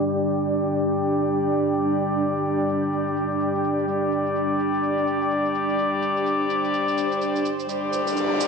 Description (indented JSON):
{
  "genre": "bass house",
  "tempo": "126 BPM",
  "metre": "4/4",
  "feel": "swing 60% on 16ths",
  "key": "unclear",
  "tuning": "A4 = 441 Hz",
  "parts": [
    { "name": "sweeping resonant pad", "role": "sustained chords", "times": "0.0-8.5 s", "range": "G3 to G5", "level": "-31 LUFS", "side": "left 2 dB", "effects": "chorus" },
    { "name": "warm horn section", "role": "stabs", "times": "0.0-8.5 s", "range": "G3 to D5", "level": "-24 LUFS", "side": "left 2 dB", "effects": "digital delay" },
    { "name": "granular cloud pad", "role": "texture", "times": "0.0-8.5 s", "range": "D4 to G5", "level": "-26 LUFS", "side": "right 3 dB", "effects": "built-in reverb" },
    { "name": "shaker", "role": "drums", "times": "0.1-8.5 s", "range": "none", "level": "-38 LUFS", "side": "right 10 dB", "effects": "none" },
    { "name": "riser", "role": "sound effects", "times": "8.0-8.5 s", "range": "none", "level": "-29 LUFS", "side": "right 1 dB", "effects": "none" }
  ],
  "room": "wet lush hall reverb, RT60 1.9 s",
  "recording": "low-pass filter",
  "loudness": "-21 LUFS",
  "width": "side -5 dB against mid",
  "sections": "0.0-8.5 A section",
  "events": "filter sweep on analog synth pad 0.0-8.5; filter sweep 0.0-8.5; riser 8.0-8.5",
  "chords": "0.0 G5",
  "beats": "| 0.07 0.54 1.02 1.50 | 1.97 2.45 2.92 3.40 | 3.88 4.35 4.83 5.30 | 5.78 6.26 6.73 7.21 | 7.69 8.16"
}